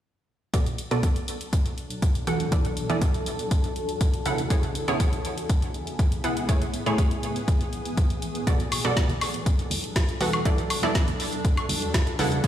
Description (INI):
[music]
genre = progressive house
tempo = 121 BPM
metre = 4/4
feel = straight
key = B dorian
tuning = A4 = 437 Hz
[part]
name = shimmering ambient pad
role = sustained chords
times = 1.4-12.5 s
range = C#2 to A4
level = -32 LUFS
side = left 1 dB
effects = chorus, built-in reverb, sidechain pumping
[part]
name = wide unison pluck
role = stabs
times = 0.5-12.5 s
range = A2 to F#5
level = -28 LUFS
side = right 2 dB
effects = wide subtle chorus, sidechain pumping, tape echo
[part]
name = deep house drum kit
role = drums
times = 0.5-12.5 s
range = hi-hat, snare drum, woodblock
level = -32 LUFS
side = left 1 dB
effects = sidechain pumping on hats, sidechain pumping on perc
[part]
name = electronic kick drum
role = drums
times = 0.5-12.5 s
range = none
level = -23 LUFS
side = equal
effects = none
[part]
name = congas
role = percussion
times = 8.8-12.3 s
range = none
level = -34 LUFS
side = equal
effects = sidechain pumping on perc
[sound]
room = light reverb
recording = played on a big sound system in a bare room, stone room reverb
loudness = -23 LUFS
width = side -11 dB against mid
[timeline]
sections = 0.5-12.5 A section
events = filter sweep on synth pluck 0.5-12.5; filter sweep on ambient pad 0.5-12.5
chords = 0.5 Bm7; 2.5 E7sus4; 4.5 C#m7; 6.5 Amaj7; 8.5 Bm7; 10.5 E7sus4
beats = | 0.54 1.03 1.53 2.02 | 2.52 3.02 3.51 4.01 | 4.50 5.00 5.50 5.99 | 6.49 6.98 7.48 7.97 | 8.47 8.97 9.46 9.96 | 10.45 10.95 11.45 11.94 | 12.44